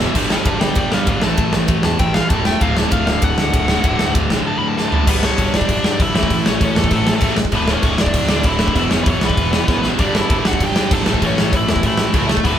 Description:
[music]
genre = punk rock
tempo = 195 BPM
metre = 4/4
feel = straight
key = unclear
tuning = A4 = 440 Hz
[part]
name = crunchy overdriven guitar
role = riff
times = 0.0-12.6 s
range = D2 to A3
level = -25 LUFS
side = left 5 dB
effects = none
[part]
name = high-gain distorted guitar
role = riff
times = 0.0-12.6 s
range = D2 to A3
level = -24 LUFS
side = left 1 dB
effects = distortion
[part]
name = sludgy distorted guitar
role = riff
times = 0.0-12.6 s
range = D2 to A3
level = -23 LUFS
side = right 2 dB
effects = overdrive
[part]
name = fuzz picked electric bass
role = bass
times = 0.0-12.6 s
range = D1 to G2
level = -24 LUFS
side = equal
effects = overdrive
[part]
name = big rock drum kit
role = drums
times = 0.2-12.5 s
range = crash cymbal, kick drum, ride cymbal, snare drum, toms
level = -17 LUFS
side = equal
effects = none
[part]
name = nasal lead guitar with a parked wah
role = melody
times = 0.3-12.6 s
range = A3 to B5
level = -22 LUFS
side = left 1 dB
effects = overdrive
[sound]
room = moderate small room reverb, RT60 0.6 s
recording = band playing live in one room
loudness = -14 LUFS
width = side -10 dB against mid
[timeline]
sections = 0.0-5.1 A section; 5.1-12.6 B section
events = lead electric guitar solo 0.0-5.1; drum fill 4.8-5.1, 9.7-10.0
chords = 0.2 G5; 1.2 A5; 2.6 D; 5.1 G; 6.1 A; 7.5 D5; 8.8 E5; 10.0 G5; 11.1 A

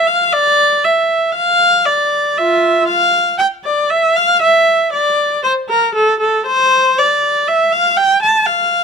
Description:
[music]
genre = classical, baroque-style suite movement for unaccompanied viola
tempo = 59 BPM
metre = 4/4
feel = rubato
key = F major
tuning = A4 = 440 Hz
[part]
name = clear viola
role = solo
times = 0.0-8.8 s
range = F4 to A5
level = -11 LUFS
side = equal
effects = none
[sound]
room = light reverb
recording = close, detailed microphones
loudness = -11 LUFS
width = side -6 dB against mid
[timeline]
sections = 0.0-8.8 A section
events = none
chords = none

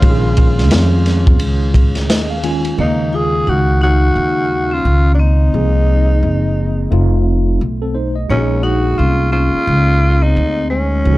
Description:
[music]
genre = hip hop, jazz-hop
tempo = 87 BPM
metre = 4/4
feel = swing 61% on 16ths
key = Bb minor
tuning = A4 = 439 Hz
[part]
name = growling tenor saxophone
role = melody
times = 0.0-11.2 s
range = Db4 to Ab4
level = -19 LUFS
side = equal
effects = none
[part]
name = vibraphone with hard mallets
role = second line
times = 0.0-11.2 s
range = Ab3 to Db5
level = -24 LUFS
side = left 2 dB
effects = none
[part]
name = tine electric piano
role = accompaniment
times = 0.0-11.2 s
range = Db3 to Ab5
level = -21 LUFS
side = right 1 dB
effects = medium stereo tremolo
[part]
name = upright bass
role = bass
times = 0.0-11.2 s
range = F1 to F2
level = -14 LUFS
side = equal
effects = none
[part]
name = crunchy breakbeat drum kit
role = drums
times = 0.0-2.8 s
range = hi-hat, kick drum, ride cymbal, snare drum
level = -14 LUFS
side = equal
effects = none
[sound]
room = small room reverb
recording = dark, warm production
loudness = -12 LUFS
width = side -18 dB against mid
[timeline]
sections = 0.0-2.8 A section; 2.8-11.2 B section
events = tine electric piano fill 1.7-2.8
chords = 0.0 Bbm7; 2.8 Ebm7; 5.5 Cm7b5; 6.9 F7; 8.3 Bbm9

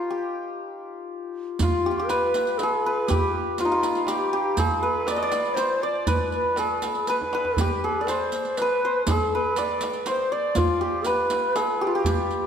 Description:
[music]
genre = Persian modal ensemble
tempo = 120 BPM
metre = 3/4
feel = straight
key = G dastgah homayun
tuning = A4 = 440 Hz
[part]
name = santur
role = melody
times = 0.0-12.5 s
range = Eb4 to Eb5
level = -24 LUFS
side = equal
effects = none
[part]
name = breathy reedy low ney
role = second line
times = 1.6-12.5 s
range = F4 to D5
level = -27 LUFS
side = left 3 dB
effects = none
[part]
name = riq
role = percussion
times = 1.6-12.4 s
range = none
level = -34 LUFS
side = right 4 dB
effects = none
[part]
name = tombak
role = percussion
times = 1.6-12.4 s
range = none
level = -29 LUFS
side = right 2 dB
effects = none
[sound]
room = moderate concert hall reverb, RT60 1.8 s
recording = none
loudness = -22 LUFS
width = side -8 dB against mid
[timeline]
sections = 0.0-1.6 A section; 1.6-12.5 B section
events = drum fill 7.1-7.6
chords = none

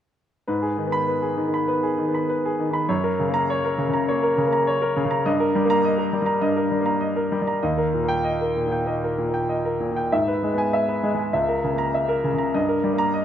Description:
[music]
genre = classical, virtuoso piano study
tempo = 95-104 BPM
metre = 4/4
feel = rubato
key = G# minor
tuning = A4 = 439 Hz
[part]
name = clear concert grand piano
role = solo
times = 0.5-13.2 s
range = C#2 to B5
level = -20 LUFS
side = equal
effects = none
[sound]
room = moderate concert hall reverb, RT60 1.9 s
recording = none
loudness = -20 LUFS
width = side -10 dB against mid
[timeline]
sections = 0.5-13.2 A section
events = none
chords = 0.5 G#m; 2.9 F#; 5.2 D#/G; 7.6 D#; 10.1 E/G#; 11.3 A#dim/C#; 12.5 D#/G

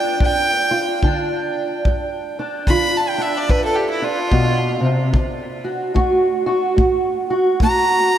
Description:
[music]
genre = acoustic country blues, solo or duo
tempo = 73 BPM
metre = 4/4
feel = swing 62% on 8ths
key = G mixolydian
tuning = A4 = 440 Hz
[part]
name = clear fiddle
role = melody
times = 0.0-8.2 s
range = E4 to B5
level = -20 LUFS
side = right 1 dB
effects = tape echo
[part]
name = fingerpicked steel-string acoustic guitar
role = accompaniment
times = 0.0-8.2 s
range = G2 to F#4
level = -19 LUFS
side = right 1 dB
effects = analog chorus
[part]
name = kick drum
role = drums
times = 0.2-7.8 s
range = none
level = -18 LUFS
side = equal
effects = none
[sound]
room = wet lush hall reverb, RT60 2.7 s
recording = dreamy mix soaked in reverb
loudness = -16 LUFS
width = side -10 dB against mid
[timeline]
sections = 0.0-8.2 A section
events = none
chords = 0.0 G7; 5.1 D

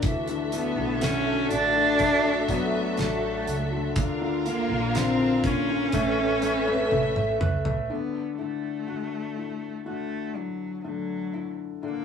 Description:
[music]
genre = pop ballad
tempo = 61 BPM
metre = 4/4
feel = straight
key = D major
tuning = A4 = 440 Hz
[part]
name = bright grand piano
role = accompaniment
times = 0.0-12.0 s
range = D3 to D4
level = -30 LUFS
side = left 3 dB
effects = none
[part]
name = warm studio string section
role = sustained chords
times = 0.0-7.9 s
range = C#4 to F5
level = -29 LUFS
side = left 1 dB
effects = none
[part]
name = flamenco guitar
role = arpeggios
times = 0.0-12.0 s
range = D3 to B4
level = -37 LUFS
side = equal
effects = none
[part]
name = woody fretless electric bass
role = bass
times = 0.0-7.9 s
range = A1 to D2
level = -34 LUFS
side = equal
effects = none
[part]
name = damped 70s drum kit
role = drums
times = 0.0-7.9 s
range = hi-hat, kick drum, snare drum, toms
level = -28 LUFS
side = right 1 dB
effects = none
[part]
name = rich cello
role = melody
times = 0.5-12.0 s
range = F#3 to D4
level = -27 LUFS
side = equal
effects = none
[sound]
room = wet booth ambience, RT60 0.2 s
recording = rough rehearsal-room recording, studio ambience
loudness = -23 LUFS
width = side -7 dB against mid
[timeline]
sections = 0.0-7.9 A section; 7.9-12.0 B section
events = drum fill 6.9-7.9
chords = 0.0 Dadd9; 4.0 Bb; 5.9 Aadd9; 7.9 Dadd9

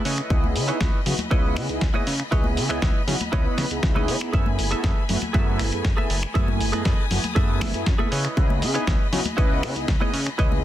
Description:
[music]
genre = nu-disco, nu disco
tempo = 119 BPM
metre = 4/4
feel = straight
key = unclear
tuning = A4 = 440 Hz
[part]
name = mellow synth brass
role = accompaniment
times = 0.0-10.6 s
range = A3 to G#5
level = -29 LUFS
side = right 1 dB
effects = chorus, sidechain pumping, dub echo
[part]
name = clear studio string section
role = sustained chords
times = 0.0-10.6 s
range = A3 to D#6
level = -35 LUFS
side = left 5 dB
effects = sidechain pumping
[part]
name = direct-recorded clean electric guitar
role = riff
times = 0.0-10.5 s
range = E4 to E5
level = -31 LUFS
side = right 2 dB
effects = analog chorus, dub echo
[part]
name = fat analog bass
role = bass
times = 0.1-10.6 s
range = F#1 to C#3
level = -26 LUFS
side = equal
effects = none
[part]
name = dusty soul sampler-style drum kit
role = drums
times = 0.1-10.5 s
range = finger snaps, hi-hat, snare drum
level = -29 LUFS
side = equal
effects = soft clipping on snare
[part]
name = electronic kick drum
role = drums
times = 0.3-10.5 s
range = none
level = -22 LUFS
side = equal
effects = overdrive
[part]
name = congas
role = percussion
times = 0.4-10.6 s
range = none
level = -34 LUFS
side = left 3 dB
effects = none
[sound]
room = digital ambience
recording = dense, heavily limited modern master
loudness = -20 LUFS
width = side -12 dB against mid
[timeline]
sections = 0.0-10.6 A section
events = none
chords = 0.1 C#m9; 4.3 F#m11; 8.1 C#m9

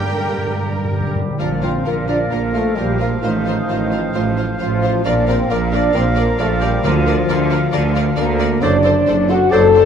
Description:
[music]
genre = classical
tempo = 132 BPM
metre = 4/4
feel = rubato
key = Bb major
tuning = A4 = 440 Hz
[part]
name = rich symphonic violin section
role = melody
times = 0.0-9.8 s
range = D5 to G5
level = -32 LUFS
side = left 4 dB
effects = none
[part]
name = bright clarinet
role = second line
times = 0.0-9.7 s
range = G4 to C5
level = -29 LUFS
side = left 4 dB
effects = none
[part]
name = mellow flute section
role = second line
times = 0.0-9.9 s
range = Eb4 to Bb5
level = -27 LUFS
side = right 1 dB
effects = none
[part]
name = rich studio violin section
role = second line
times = 0.0-9.8 s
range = Bb3 to D5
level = -30 LUFS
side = left 1 dB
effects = none
[part]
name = warm oboe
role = second line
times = 0.0-9.7 s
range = G4 to F5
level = -29 LUFS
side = right 1 dB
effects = none
[part]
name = rich symphonic viola section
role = accompaniment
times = 0.0-9.8 s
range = D3 to Bb4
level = -29 LUFS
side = right 2 dB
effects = none
[part]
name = mellow French horn section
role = sustained chords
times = 0.0-9.9 s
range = Eb3 to A4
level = -19 LUFS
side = left 3 dB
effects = none
[part]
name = concert harp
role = arpeggios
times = 0.0-9.9 s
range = F#2 to C6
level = -26 LUFS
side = left 8 dB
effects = none
[part]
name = rich symphonic cello section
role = bass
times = 0.0-9.9 s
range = F#2 to Bb4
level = -24 LUFS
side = right 4 dB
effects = none
[part]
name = rich symphonic double bass section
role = bass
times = 0.0-9.9 s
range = F#1 to G2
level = -23 LUFS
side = right 3 dB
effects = none
[part]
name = timpani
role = percussion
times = 0.0-1.4, 6.8-7.5 s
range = G2 to D3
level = -24 LUFS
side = left 1 dB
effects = none
[part]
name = warm bassoon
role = accompaniment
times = 1.4-9.7 s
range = F3 to F#3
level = -27 LUFS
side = right 2 dB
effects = none
[part]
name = mellow tuba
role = bass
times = 1.4-9.9 s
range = F#1 to D2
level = -24 LUFS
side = right 5 dB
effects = none
[sound]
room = moderate scoring stage reverb, RT60 1.5 s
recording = none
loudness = -14 LUFS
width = side -7 dB against mid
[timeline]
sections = 0.0-1.4 A section; 1.4-9.9 B section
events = timpani fill 0.0-1.4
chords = 0.0 Gm; 1.4 Bb; 3.2 F7/A; 5.1 Bb; 6.8 Bb/D; 8.6 D7/F#

